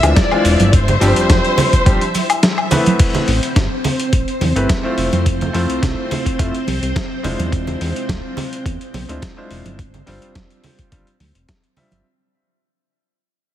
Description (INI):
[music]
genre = nu-disco, nu disco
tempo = 106 BPM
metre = 4/4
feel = swing 53% on 16ths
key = unclear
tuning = A4 = 440 Hz
[part]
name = dark symphonic violin section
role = melody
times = 0.0-2.7 s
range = C5 to E5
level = -19 LUFS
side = left 1 dB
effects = vintage 12-bit sampler grit, tape echo
[part]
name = bright baby grand piano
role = accompaniment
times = 0.0-12.0 s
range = E3 to E5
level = -21 LUFS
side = left 1 dB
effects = sidechain pumping, tape echo
[part]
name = string machine, full ensemble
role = sustained chords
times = 0.0-12.1 s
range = C4 to E5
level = -25 LUFS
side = equal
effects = ensemble chorus, sidechain pumping
[part]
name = fat analog bass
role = bass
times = 0.0-12.0 s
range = E1 to F2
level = -19 LUFS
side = equal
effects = tube saturation
[part]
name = dusty soul sampler-style drum kit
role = drums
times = 0.0-12.0 s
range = crash cymbal, hi-hat, snare drum, woodblock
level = -21 LUFS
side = left 2 dB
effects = overdrive
[part]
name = maracas and congas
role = percussion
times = 0.0-12.0 s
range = none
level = -22 LUFS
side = right 3 dB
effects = none
[part]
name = electronic kick drum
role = drums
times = 0.2-11.6 s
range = none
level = -16 LUFS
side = equal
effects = overdrive
[sound]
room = light reverb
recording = heavily compressed radio sound, multiband compression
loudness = -14 LUFS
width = side -12 dB against mid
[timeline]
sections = 0.0-3.0 A section; 3.0-12.1 B section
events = drop 0.0-3.0; fade-out 3.0-12.1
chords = 0.0 E7b9b13; 0.7 G7sus4; 3.0 Am9; 5.0 Fmaj7; 7.5 E7b9b13; 9.8 G7sus4